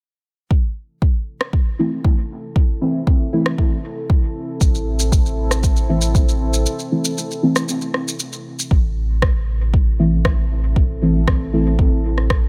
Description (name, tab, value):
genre	dub techno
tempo	117 BPM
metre	4/4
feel	straight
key	A minor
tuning	A4 = 440 Hz
part	deep dark ambient pad	sustained chords	2.0-12.5 s	C4 to A4	-31 LUFS	equal	chorus, built-in reverb, sidechain pumping
part	electronic kick drum	drums	0.5-12.4 s	none	-18 LUFS	equal	none
part	electronic rim click	drums	1.4-12.4 s	none	-25 LUFS	equal	dub echo
part	deep mellow chord stab	stabs	1.8-11.7 s	E3 to E4	-23 LUFS	equal	chorus, phaser, cassette tape, sidechain pumping, dub echo
part	soft dub sub bass	bass	4.6-12.5 s	A1	-22 LUFS	equal	sidechain pumping
part	maracas	percussion	4.6-8.7 s	none	-27 LUFS	equal	none
room	little or no reverb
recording	none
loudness	-18 LUFS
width	mono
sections	0.5-8.7 A section; 8.7-12.5 B section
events	filter sweep on synth stab 0.5-8.7; break 6.7-8.7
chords	0.5 Am